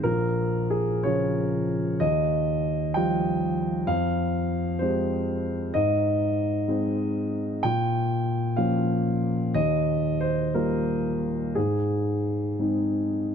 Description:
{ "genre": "neoclassical minimalist piano", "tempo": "58-65 BPM (dotted quarters)", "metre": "6/8", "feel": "rubato", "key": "Ab major", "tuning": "A4 = 438 Hz", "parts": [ { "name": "dark baby grand piano", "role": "solo", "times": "0.0-13.3 s", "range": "Bb1 to G5", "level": "-23 LUFS", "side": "equal", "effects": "none" } ], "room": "little or no reverb", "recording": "close, detailed microphones", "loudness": "-23 LUFS", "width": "side -7 dB against mid", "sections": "0.0-13.3 A section", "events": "none", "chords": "0.0 Bbm; 2.0 Ebadd9; 3.9 Fmadd9; 5.7 Ab; 7.6 Bbm; 9.5 Ebadd9; 11.6 Ab" }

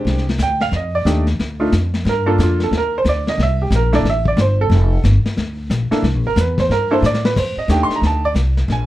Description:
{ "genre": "jazz piano trio", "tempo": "181 BPM", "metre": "4/4", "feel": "swing 63% on 8ths", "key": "F mixolydian", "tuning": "A4 = 441 Hz", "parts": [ { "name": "clear upright piano", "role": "melody", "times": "0.0-8.9 s", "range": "Ab3 to C6", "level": "-18 LUFS", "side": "right 2 dB", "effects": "none" }, { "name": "upright bass", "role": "bass", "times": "0.0-8.9 s", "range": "F1 to A2", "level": "-17 LUFS", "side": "equal", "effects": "none" }, { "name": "vintage brush drum kit", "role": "drums", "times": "0.1-8.9 s", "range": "brushed snare drum, crash cymbal, hi-hat, kick drum, snare drum", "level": "-22 LUFS", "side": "left 2 dB", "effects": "none" } ], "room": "light reverb", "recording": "dark, warm production", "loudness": "-14 LUFS", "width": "side -15 dB against mid", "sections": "0.0-7.4 A section; 7.4-8.9 A section", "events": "upright piano solo 0.0-8.9; drum fill 7.0-7.4", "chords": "0.0 Bb13 (rootless); 0.7 F13; 2.1 Gm7; 3.4 C13; 4.7 Fadd9; 5.4 D5; 6.0 C13 (rootless); 7.4 F13" }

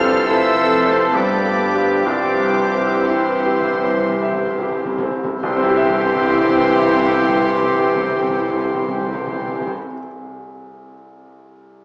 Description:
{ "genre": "classical, romantic movement for piano and orchestra", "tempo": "47-80 BPM", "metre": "3/4", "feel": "rubato", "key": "C major", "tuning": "A4 = 439 Hz", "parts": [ { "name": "clear grand piano", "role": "melody", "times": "0.0-11.8 s", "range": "C2 to E5", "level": "-22 LUFS", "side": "equal", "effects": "none" }, { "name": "warm symphonic violin section", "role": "melody", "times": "0.0-9.7 s", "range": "C6 to F6", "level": "-29 LUFS", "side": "equal", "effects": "none" }, { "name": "bright concert flute", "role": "second line", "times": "0.0-9.7 s", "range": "C5 to G5", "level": "-27 LUFS", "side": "equal", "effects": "none" }, { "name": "clear oboe", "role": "second line", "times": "0.0-9.7 s", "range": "B4 to C5", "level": "-26 LUFS", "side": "equal", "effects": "none" }, { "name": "warm clarinet", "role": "second line", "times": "0.0-9.7 s", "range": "G4 to A4", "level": "-25 LUFS", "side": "equal", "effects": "none" }, { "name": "warm symphonic violin section", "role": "second line", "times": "0.0-9.7 s", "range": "G4 to C5", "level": "-26 LUFS", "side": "equal", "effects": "none" }, { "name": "mellow bassoon", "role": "accompaniment", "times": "0.0-9.7 s", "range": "E3 to F3", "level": "-25 LUFS", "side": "equal", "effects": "none" }, { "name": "warm chamber viola section", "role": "accompaniment", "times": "0.0-9.7 s", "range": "E3 to E4", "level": "-25 LUFS", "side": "equal", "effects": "none" }, { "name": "clear trombone section", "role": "sustained chords", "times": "0.0-9.7 s", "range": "G2 to F3", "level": "-28 LUFS", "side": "equal", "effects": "none" }, { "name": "dark French horn section", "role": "sustained chords", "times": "0.0-9.7 s", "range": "B3 to E4", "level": "-26 LUFS", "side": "equal", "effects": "none" }, { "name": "warm trumpet", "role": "stabs", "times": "0.0-9.7 s", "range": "G4 to A4", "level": "-23 LUFS", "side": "equal", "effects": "none" }, { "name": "dark chamber double bass section", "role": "bass", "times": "0.0-9.7 s", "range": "F1 to C2", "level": "-38 LUFS", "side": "equal", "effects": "none" }, { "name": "warm symphonic cello section", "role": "bass", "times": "0.0-9.7 s", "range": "F2 to C3", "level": "-31 LUFS", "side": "equal", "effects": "none" }, { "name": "timpani", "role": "percussion", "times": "2.1-9.7 s", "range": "C3", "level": "-26 LUFS", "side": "equal", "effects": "none" } ], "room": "wet scoring stage reverb, RT60 1.8 s", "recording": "small speaker sound", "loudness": "-14 LUFS", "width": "side -28 dB against mid", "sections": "0.0-5.4 A section; 5.4-11.8 B section", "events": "slowing down 0.0-5.4; timpani fill 2.1-5.4", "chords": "0.0 Fmaj7; 1.2 G7; 2.1 C" }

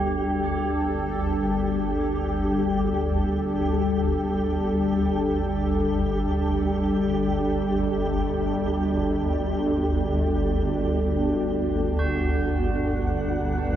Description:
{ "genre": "dark ambient drone", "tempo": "free time", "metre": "none", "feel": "none", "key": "unclear", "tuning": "A4 = 440 Hz", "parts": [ { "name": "sweeping resonant pad", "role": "sustained chords", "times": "0.0-13.8 s", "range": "G2 to A4", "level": "-25 LUFS", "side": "equal", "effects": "chorus" }, { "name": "tubular bells", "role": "arpeggios", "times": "0.0-13.8 s", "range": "F#4 to G4", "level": "-35 LUFS", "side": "right 2 dB", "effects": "diffuse ambient delay" }, { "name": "swarming drone", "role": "drone", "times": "0.0-13.8 s", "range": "G1 to D2", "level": "-26 LUFS", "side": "equal", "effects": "built-in reverb" }, { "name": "flickering grainy texture", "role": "texture", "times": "0.0-13.8 s", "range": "G4 to F#5", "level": "-31 LUFS", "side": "equal", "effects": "built-in reverb" } ], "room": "wet huge ambient reverb, RT60 8.6 s", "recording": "none", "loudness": "-22 LUFS", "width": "side -10 dB against mid", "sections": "0.0-13.8 A section", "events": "fade-out on tubular bells 0.0-13.8", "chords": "0.0 D/G" }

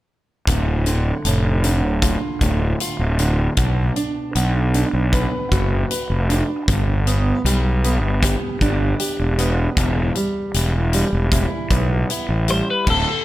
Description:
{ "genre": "quiet-loud alternative rock", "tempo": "78 BPM", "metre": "4/4", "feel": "straight", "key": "D dorian", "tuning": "A4 = 443 Hz", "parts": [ { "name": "fingerpicked steel-string acoustic guitar", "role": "arpeggios", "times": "0.5-13.2 s", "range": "D2 to B4", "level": "-24 LUFS", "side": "right 2 dB", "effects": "analog delay" }, { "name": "fuzz fingered electric bass", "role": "bass", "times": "0.5-13.0 s", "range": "D1 to B1", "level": "-19 LUFS", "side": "equal", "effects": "overdrive" }, { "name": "big rock drum kit", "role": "drums", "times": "0.5-13.1 s", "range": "crash cymbal, hi-hat, kick drum", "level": "-23 LUFS", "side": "equal", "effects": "none" }, { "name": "twelve-string electric guitar", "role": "melody", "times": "12.5-13.2 s", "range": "A4 to C5", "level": "-19 LUFS", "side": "left 3 dB", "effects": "none" } ], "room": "small room ambience", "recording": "none", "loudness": "-17 LUFS", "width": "side -16 dB against mid", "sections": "0.5-12.9 A section", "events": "none", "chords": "0.5 Dm; 3.6 Bm; 6.7 G; 9.8 Em" }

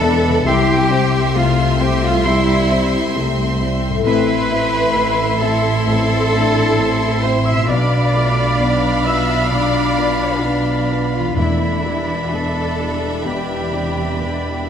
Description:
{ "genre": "cinematic, emotional film score for orchestra", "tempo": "66 BPM", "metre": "4/4", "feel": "rubato", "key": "A minor", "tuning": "A4 = 440 Hz", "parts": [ { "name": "dark symphonic violin section", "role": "melody", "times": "0.0-14.7 s", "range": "B5 to C6", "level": "-28 LUFS", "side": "right 1 dB", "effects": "none" }, { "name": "rich symphonic violin section", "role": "second line", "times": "0.0-14.7 s", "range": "E5 to F5", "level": "-27 LUFS", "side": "left 2 dB", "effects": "none" }, { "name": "silver concert flute", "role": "second line", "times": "0.0-14.7 s", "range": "D5 to E6", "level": "-26 LUFS", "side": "left 1 dB", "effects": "none" }, { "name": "clear studio viola section", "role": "accompaniment", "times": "0.0-14.7 s", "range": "C4 to E4", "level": "-27 LUFS", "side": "right 1 dB", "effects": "none" }, { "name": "warm concert grand piano", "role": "accompaniment", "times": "0.0-14.7 s", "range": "E1 to E5", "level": "-22 LUFS", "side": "left 4 dB", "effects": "none" }, { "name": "dark French horn section", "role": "sustained chords", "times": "0.0-14.7 s", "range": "C3 to E4", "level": "-24 LUFS", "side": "left 4 dB", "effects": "none" }, { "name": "concert harp", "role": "arpeggios", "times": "0.0-14.7 s", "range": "A2 to E5", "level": "-27 LUFS", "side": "left 6 dB", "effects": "none" }, { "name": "rich symphonic cello section", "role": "bass", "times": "0.0-14.7 s", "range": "D4 to E5", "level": "-21 LUFS", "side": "right 1 dB", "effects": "none" }, { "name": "rich symphonic double bass section", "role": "bass", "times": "0.0-14.7 s", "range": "A1 to E2", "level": "-22 LUFS", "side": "right 4 dB", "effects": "none" }, { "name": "bright oboe", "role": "second line", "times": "0.5-14.7 s", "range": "B5 to C6", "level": "-27 LUFS", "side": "equal", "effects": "none" }, { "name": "warm clarinet", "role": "second line", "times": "0.5-14.7 s", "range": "D5 to F5", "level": "-28 LUFS", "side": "right 1 dB", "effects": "none" }, { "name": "timpani", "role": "percussion", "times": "11.4-12.7 s", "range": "E2", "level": "-23 LUFS", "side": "equal", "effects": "none" } ], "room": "moderate scoring stage reverb, RT60 1.5 s", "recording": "none", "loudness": "-14 LUFS", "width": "side -8 dB against mid", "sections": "0.0-14.7 A section", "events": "none", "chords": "0.5 C; 4.1 Am; 7.7 Bdim; 11.4 Em7" }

